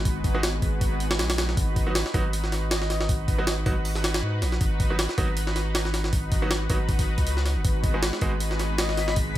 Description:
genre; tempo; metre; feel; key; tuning
drum and bass, jungle; 158 BPM; 4/4; swing 55% on 16ths; unclear; A4 = 442 Hz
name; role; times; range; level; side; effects
lush unison pad; sustained chords; 0.0-9.4 s; G#3 to B4; -32 LUFS; equal; chorus
saturated sub bass; bass; 0.0-9.4 s; F#1 to G#2; -27 LUFS; equal; none
jungle sampler-style drum kit; drums; 0.1-9.4 s; hi-hat, kick drum, snare drum; -25 LUFS; equal; overdrive, small room reverb
bright baby grand piano; stabs; 0.3-8.3 s; F#3 to F#4; -34 LUFS; right 2 dB; dub echo
breathy flute-like synth lead; melody; 2.7-3.5, 8.8-9.2 s; D#5; -34 LUFS; left 4 dB; lush chorus, vintage 12-bit sampler grit, dub echo
backwards swelling texture; texture; 8.6-9.4 s; B5 to B6; -39 LUFS; left 3 dB; built-in reverb
room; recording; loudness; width
digital ambience; none; -22 LUFS; side -14 dB against mid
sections
0.0-9.4 A section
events
none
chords
0.0 G#m7; 1.6 B/G#; 7.6 G#m7

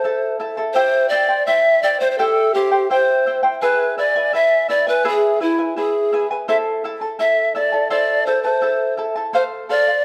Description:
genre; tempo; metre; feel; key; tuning
andean folk; 84 BPM; 2/4; straight; A minor; A4 = 440 Hz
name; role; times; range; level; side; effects
polished pan flute; melody; 0.0-10.0 s; E4 to E5; -19 LUFS; equal; none
charango; accompaniment; 0.0-10.0 s; E4 to A5; -24 LUFS; equal; none
room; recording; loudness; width
moderate recital hall reverb, RT60 1.6 s; none; -18 LUFS; mono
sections
0.7-10.0 A section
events
none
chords
0.0 Am; 0.7 C; 3.6 E; 6.5 Am; 9.3 F

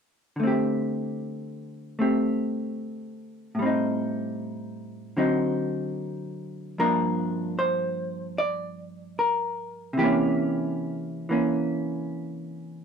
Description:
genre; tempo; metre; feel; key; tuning
jazz ballad; 76 BPM; 4/4; swing 69% on 8ths; G minor; A4 = 443 Hz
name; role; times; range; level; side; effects
vintage hollow-body jazz guitar; solo; 0.4-12.8 s; G2 to D5; -25 LUFS; equal; none
room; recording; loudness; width
little or no reverb; dry, close 1970s-style studio recording; -25 LUFS; side -6 dB against mid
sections
0.4-6.8 A section; 6.8-12.8 B section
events
none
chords
0.4 D7sus4; 3.6 Am7b5; 5.2 D7b9; 6.8 Gm7; 10.0 C7b9

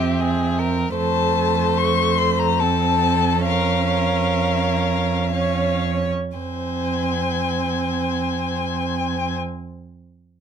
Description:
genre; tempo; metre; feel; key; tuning
classical, slow romantic movement for string quartet; 55-78 BPM; 3/4; rubato; unclear; A4 = 439 Hz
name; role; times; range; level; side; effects
dark violin; melody; 0.0-9.3 s; E5 to Db6; -24 LUFS; left 8 dB; none
clear violin; second line; 0.0-9.4 s; G4 to Db5; -26 LUFS; left 3 dB; none
warm viola; accompaniment; 0.0-9.4 s; A3 to Db4; -25 LUFS; right 4 dB; none
rich cello; bass; 0.0-9.3 s; F2; -23 LUFS; right 4 dB; none
room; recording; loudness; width
light reverb; close, detailed microphones; -18 LUFS; side -8 dB against mid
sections
0.0-6.4 A section; 6.4-9.4 B section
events
slowing down 0.0-6.4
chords
0.0 C7/F; 1.0 F; 3.5 Bbm/F; 6.4 Fm

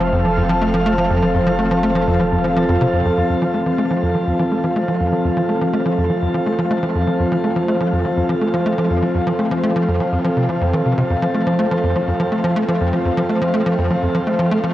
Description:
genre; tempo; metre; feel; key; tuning
ambient, sequencer-driven space music; 123 BPM; 4/4; straight; F major; A4 = 440 Hz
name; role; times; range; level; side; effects
sweeping resonant pad; sustained chords; 0.0-14.7 s; F3 to F5; -18 LUFS; equal; chorus
tight sequencer bass; riff; 0.0-14.7 s; F2 to A3; -18 LUFS; equal; ensemble chorus, tape echo
round analog bass; bass; 0.0-3.3 s; F1; -27 LUFS; equal; none
room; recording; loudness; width
wet shimmer reverb, RT60 7.1 s; worn, warbling old tape, cassette tape, warbly pitch drift; -15 LUFS; side -14 dB against mid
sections
0.0-3.3 A section; 3.3-14.7 B section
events
none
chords
0.0 F

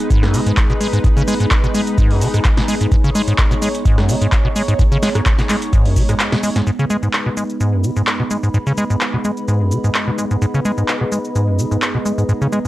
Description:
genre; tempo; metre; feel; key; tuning
acid house; 128 BPM; 4/4; swing 54% on 16ths; G# minor; A4 = 440 Hz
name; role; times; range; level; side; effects
lush unison pad; sustained chords; 0.0-12.7 s; G#3 to C#5; -24 LUFS; left 1 dB; chorus, phaser, sidechain pumping
electro analog drum machine; drums; 0.0-12.7 s; handclaps, hi-hat, rim click, shaker, snare drum; -22 LUFS; equal; overdrive
warbly tape-like pad; texture; 0.0-12.7 s; B3 to B5; -26 LUFS; right 2 dB; chorus, built-in reverb, sidechain pumping
acid bass, square; riff; 0.1-12.7 s; F#2 to G#3; -17 LUFS; equal; tube saturation
electronic kick drum; drums; 0.1-6.1 s; none; -15 LUFS; equal; overdrive
room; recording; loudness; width
little or no reverb; dry, gritty hardware recording, transformer saturation, cassette tape; -14 LUFS; side -16 dB against mid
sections
0.0-6.7 A section; 6.7-12.7 B section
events
break 6.2-6.7; band accent 6.2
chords
0.0 G#m

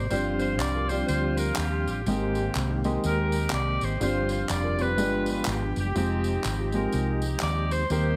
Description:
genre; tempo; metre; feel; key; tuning
uptempo gospel; 123 BPM; 4/4; swing 61% on 8ths; unclear; A4 = 440 Hz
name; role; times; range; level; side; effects
clear saxophone section; melody; 0.0-8.2 s; Bb3 to D5; -33 LUFS; equal; slapback echo
mellow tonewheel organ; sustained chords; 0.0-8.2 s; D3 to G4; -35 LUFS; equal; slow rotary speaker
hollow-body short-scale fingered electric bass; bass; 0.0-8.2 s; F1 to Eb2; -31 LUFS; equal; none
warm grand piano; accompaniment; 0.1-8.2 s; G2 to Bb4; -32 LUFS; equal; none
tambourine and handclaps; percussion; 0.1-8.0 s; none; -38 LUFS; equal; none
room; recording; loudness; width
light reverb, small room ambience; none; -27 LUFS; mono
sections
0.0-8.2 A section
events
none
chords
0.1 G7sus4; 2.1 Abmaj9; 4.0 G7sus4; 5.0 G7b9; 5.9 Fm9

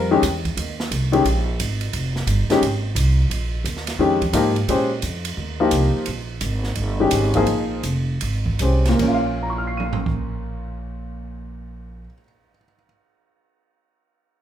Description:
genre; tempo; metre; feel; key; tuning
modal jazz; 148-175 BPM; 4/4; swing 64% on 8ths; Bb dorian; A4 = 440 Hz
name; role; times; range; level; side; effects
warm upright piano; accompaniment; 0.0-12.8 s; Bb2 to Eb7; -20 LUFS; left 2 dB; none
upright bass; bass; 0.0-12.1 s; F1 to Bb2; -23 LUFS; right 1 dB; none
open jazz drum kit; drums; 0.2-10.1 s; crash cymbal, hi-hat, kick drum, ride cymbal, snare drum, toms; -28 LUFS; right 4 dB; none
room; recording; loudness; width
light reverb; minimal, uncompressed stereo recording; -18 LUFS; side -10 dB against mid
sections
0.0-9.0 A section; 9.0-12.2 B section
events
slowing down 6.1-9.0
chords
0.0 Bb9sus4; 9.0 Bbm

